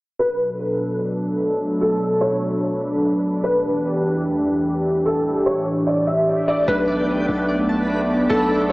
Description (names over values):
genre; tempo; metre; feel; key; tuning
hip hop; 148 BPM; 4/4; half-time; B minor; A4 = 437 Hz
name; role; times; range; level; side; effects
felt-muted upright piano; melody; 0.2-8.7 s; A4 to E5; -22 LUFS; equal; ensemble chorus, diffuse ambient delay
hollow soft pad; sustained chords; 0.2-8.7 s; E2 to A4; -21 LUFS; equal; chorus
backwards swelling texture; texture; 1.1-8.7 s; G3 to B4; -30 LUFS; equal; built-in reverb
soft electric-piano-like synth keys; arpeggios; 6.7-8.7 s; D4 to A5; -24 LUFS; equal; chorus, diffuse ambient delay
long sustained 808-style bass; bass; 6.7-8.7 s; B1; -25 LUFS; equal; none
room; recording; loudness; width
wet plate reverb, RT60 3.6 s; dreamy mix soaked in reverb, low-pass filter, small speaker sound; -18 LUFS; side -20 dB against mid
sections
0.2-6.7 A section; 6.7-8.7 B section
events
filter sweep 0.2-6.7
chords
0.2 Bm7; 3.4 Em7; 5.1 A7sus4; 6.7 Bm7